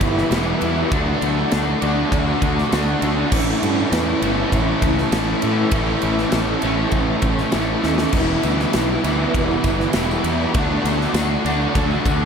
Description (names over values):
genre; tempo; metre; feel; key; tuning
rock, shoegaze and dream pop; 100 BPM; 4/4; straight; A mixolydian; A4 = 440 Hz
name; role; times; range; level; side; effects
picked twelve-string acoustic guitar; arpeggios; 0.0-12.3 s; E3 to A4; -29 LUFS; right 9 dB; analog chorus, analog delay
biting overdriven guitar; riff; 0.0-12.3 s; A2 to F#4; -23 LUFS; left 8 dB; ensemble chorus
raw garage guitar; riff; 0.0-12.3 s; A2 to F#4; -24 LUFS; right 8 dB; overdrive, reverse reverb
tight distorted guitar; riff; 0.0-12.3 s; E2 to D4; -25 LUFS; left 1 dB; distortion
fuzz fingered electric bass; bass; 0.0-12.3 s; E1 to A2; -23 LUFS; equal; overdrive
big rock drum kit; drums; 0.0-12.2 s; crash cymbal, kick drum, ride cymbal, snare drum, splash cymbal; -24 LUFS; equal; none
tambourine; percussion; 8.4-12.2 s; none; -41 LUFS; left 14 dB; none
room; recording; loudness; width
moderate huge ambient reverb, RT60 4.2 s; dreamy mix soaked in reverb; -17 LUFS; side -6 dB against mid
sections
0.0-12.3 A section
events
drum fill 7.8-8.1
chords
0.0 Em; 0.9 D; 3.3 Aadd9; 8.1 Em; 10.5 D